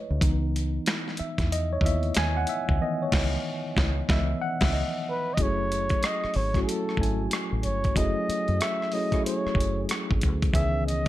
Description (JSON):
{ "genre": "R&B, neo-soul", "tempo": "93 BPM", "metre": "4/4", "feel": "swing 62% on 16ths", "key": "F# dorian", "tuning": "A4 = 440 Hz", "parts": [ { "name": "tine electric piano", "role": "accompaniment", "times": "0.0-11.1 s", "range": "D#3 to G#5", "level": "-29 LUFS", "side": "left 1 dB", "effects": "overdrive, fast stereo tremolo" }, { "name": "deep dub fingered electric bass", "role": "bass", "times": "0.1-11.1 s", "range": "F#1 to F#2", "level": "-27 LUFS", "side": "equal", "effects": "none" }, { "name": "dusty soul sampler-style drum kit", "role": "drums", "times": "0.2-11.1 s", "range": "crash cymbal, finger snaps, hi-hat, kick drum, rim click, snare drum", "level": "-27 LUFS", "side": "equal", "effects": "none" }, { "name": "breathy flugelhorn", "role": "melody", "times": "5.1-11.1 s", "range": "G#4 to E5", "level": "-30 LUFS", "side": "equal", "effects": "none" } ], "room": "little or no reverb", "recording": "none", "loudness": "-24 LUFS", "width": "side -14 dB against mid", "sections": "0.0-5.4 A section; 5.4-11.1 B section", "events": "tine electric piano solo 0.0-5.4; band accent 2.8-5.4", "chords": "0.2 C#m9; 5.4 F#m9; 10.5 C#m9" }